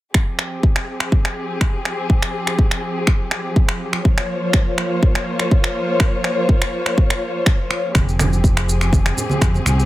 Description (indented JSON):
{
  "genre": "afro house",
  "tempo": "123 BPM",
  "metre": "4/4",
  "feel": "straight",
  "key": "F minor",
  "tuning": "A4 = 441 Hz",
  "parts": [
    { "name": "muted studio string section", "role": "sustained chords", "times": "0.1-9.9 s", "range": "F3 to Db5", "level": "-23 LUFS", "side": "left 1 dB", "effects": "sidechain pumping" },
    { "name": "electronic finger snaps and shaker", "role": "drums", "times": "0.1-9.9 s", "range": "none", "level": "-23 LUFS", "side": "right 1 dB", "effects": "none" },
    { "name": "electronic kick drum", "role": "drums", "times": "0.1-9.5 s", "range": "none", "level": "-16 LUFS", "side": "equal", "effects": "none" },
    { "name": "smooth gliding synth bass", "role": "bass", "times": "7.9-9.9 s", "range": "F1 to F2", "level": "-18 LUFS", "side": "equal", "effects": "sidechain pumping" },
    { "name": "congas", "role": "percussion", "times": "8.0-9.8 s", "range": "none", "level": "-23 LUFS", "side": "right 3 dB", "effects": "none" }
  ],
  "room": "light reverb, digital ambience",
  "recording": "none",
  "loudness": "-16 LUFS",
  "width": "side -16 dB against mid",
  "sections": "0.1-9.9 A section",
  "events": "none",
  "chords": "0.1 Fm; 4.0 Bbm/F; 8.0 Fm"
}